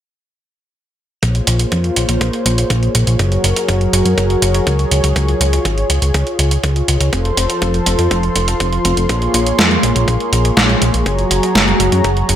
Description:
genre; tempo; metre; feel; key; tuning
italo disco; 122 BPM; 4/4; straight; Bb minor; A4 = 440 Hz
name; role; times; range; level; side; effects
warm analog pad; sustained chords; 1.2-12.4 s; F3 to C6; -17 LUFS; equal; chorus
fat analog bass; bass; 1.2-12.4 s; F1 to Gb2; -16 LUFS; equal; tube saturation
clean 12-bit digital drum machine; drums; 1.2-12.4 s; hi-hat, snare drum; -18 LUFS; right 1 dB; gated reverb
electronic kick drum; drums; 1.2-12.1 s; none; -23 LUFS; equal; high-pass filter on kick, high-pass filter on room
room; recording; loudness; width
light reverb; bright 1980s-style digital production; -12 LUFS; side -10 dB against mid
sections
1.2-12.4 A section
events
filter sweep on analog synth bass 1.2-12.4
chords
1.2 Bbm7; 3.2 Gbadd9; 5.2 Db; 7.1 F; 9.1 Bbm7; 11.1 Gbadd9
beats
| 1.23 1.72 2.21 2.70 | 3.19 3.69 4.18 4.67 | 5.16 5.65 6.14 6.64 | 7.13 7.62 8.11 8.60 | 9.10 9.59 10.08 10.57 | 11.06 11.55 12.05

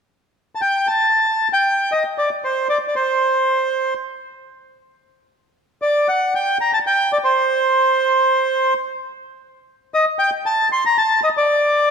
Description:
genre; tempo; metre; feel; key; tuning
tango; 116 BPM; 4/4; rubato; unclear; A4 = 442 Hz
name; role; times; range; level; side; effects
bandoneon; solo; 0.6-11.9 s; C5 to C6; -16 LUFS; equal; none
room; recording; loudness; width
moderate scoring stage reverb, RT60 2.0 s; none; -16 LUFS; side -6 dB against mid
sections
0.0-1.1 A section; 1.1-5.3 B section; 5.3-11.9 C section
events
none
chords
none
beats
0.08 0.60 | 1.12 1.65 2.17 2.69 | 3.20 3.71 4.23 4.75 | 5.27 5.79 6.32 6.84 | 7.36 7.87 8.38 8.90 | 9.41 9.92 10.43 10.95 | 11.46

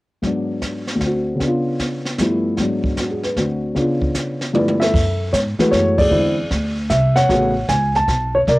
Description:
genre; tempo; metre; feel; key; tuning
jazz piano trio; 153 BPM; 3/4; swing 66% on 8ths; F# minor; A4 = 440 Hz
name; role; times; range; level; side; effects
dark baby grand piano; melody; 0.2-8.6 s; D2 to A5; -17 LUFS; equal; cassette tape
jazz brush drum kit; drums; 0.2-8.6 s; brushed snare drum, crash cymbal, hi-hat, kick drum, ride cymbal, snare drum, toms; -24 LUFS; equal; cassette tape
upright bass; bass; 4.9-8.6 s; A1 to G#2; -20 LUFS; equal; none
room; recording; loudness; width
light reverb; home recording on cassette; -16 LUFS; side -20 dB against mid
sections
0.2-4.9 A section; 4.9-8.6 B section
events
drum fill 4.5-4.9; band accent 5.9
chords
0.2 G#m7b5; 1.0 D7; 1.4 C#7b9; 2.2 G13; 2.6 G#m7b5; 3.4 D7; 3.8 C#7b9; 4.5 G13; 4.9 F#m9; 6.1 Eaug7; 7.3 A69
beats
| 0.23 0.62 1.01 | 1.41 1.80 2.19 | 2.58 2.98 3.37 | 3.76 4.15 4.54 | 4.94 5.33 5.72 | 6.11 6.51 6.90 | 7.29 7.68 8.08 | 8.47

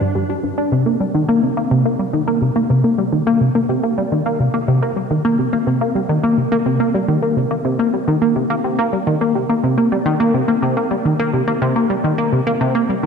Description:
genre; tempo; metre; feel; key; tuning
ambient; 106 BPM; 4/4; straight; C minor; A4 = 438 Hz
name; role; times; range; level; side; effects
tight sequenced synth; solo; 0.0-13.1 s; G2 to D4; -15 LUFS; equal; chorus, ping-pong delay
room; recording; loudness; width
wet plate reverb, RT60 2.8 s; dark, warm production; -15 LUFS; side -6 dB against mid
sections
0.7-13.1 A section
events
none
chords
none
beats
0.15 | 0.72 1.28 1.85 2.42 | 2.98 3.55 4.11 4.68 | 5.25 5.81 6.38 6.95 | 7.51 8.08 8.64 9.21 | 9.78 10.34 10.91 11.47 | 12.04 12.61

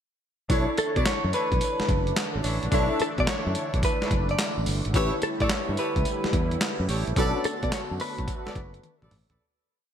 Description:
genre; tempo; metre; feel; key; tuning
R&B, new jack swing; 108 BPM; 4/4; swing 67% on 16ths; B minor; A4 = 440 Hz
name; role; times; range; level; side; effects
warm concert grand piano; accompaniment; 0.5-9.4 s; C#4 to E5; -32 LUFS; left 2 dB; ensemble chorus
sweeping resonant pad; sustained chords; 0.5-9.4 s; D3 to F#4; -35 LUFS; right 2 dB; chorus
clear horn section; stabs; 0.5-9.4 s; D4 to D5; -34 LUFS; right 2 dB; none
fingered electric bass; bass; 0.5-9.4 s; F#1 to B2; -28 LUFS; equal; none
boom bap sampler-style drum kit; drums; 0.5-9.4 s; handclaps, hi-hat, kick drum, snare drum, tambourine, toms; -28 LUFS; equal; overdrive, gated reverb
direct-recorded clean electric guitar; melody; 0.8-9.1 s; A4 to D5; -30 LUFS; equal; wide subtle chorus
room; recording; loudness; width
light reverb, digital ambience; bright 1980s-style digital production; -23 LUFS; side -8 dB against mid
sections
0.5-9.4 chorus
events
fade-out 7.2-9.4; drum fill 8.8-9.4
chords
0.5 Bm11; 4.9 A7; 7.2 Bm7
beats
| 0.50 1.05 1.61 2.17 | 2.72 3.28 3.83 4.39 | 4.94 5.50 6.05 6.61 | 7.17 7.72 8.28 8.83

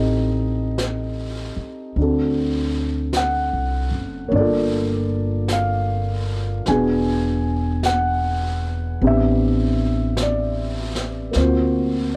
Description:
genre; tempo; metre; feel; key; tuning
jazz ballad; 51 BPM; 4/4; swing 66% on 8ths; unclear; A4 = 440 Hz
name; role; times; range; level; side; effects
dark grand piano; accompaniment; 0.0-12.2 s; Bb3 to G#5; -24 LUFS; equal; none
upright bass; bass; 0.0-12.2 s; E1 to D2; -25 LUFS; equal; none
jazz brush drum kit; drums; 0.8-12.2 s; brushed snare drum, hi-hat, snare drum; -34 LUFS; equal; none
room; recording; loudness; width
little or no reverb; none; -21 LUFS; mono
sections
0.0-12.2 A section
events
none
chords
0.0 Am7b5; 2.0 D7; 4.3 Gm9; 6.7 E7; 9.0 Am11; 11.3 D7alt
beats
0.80 1.97 3.15 | 4.32 5.50 6.67 7.84 | 9.02 10.19 11.35

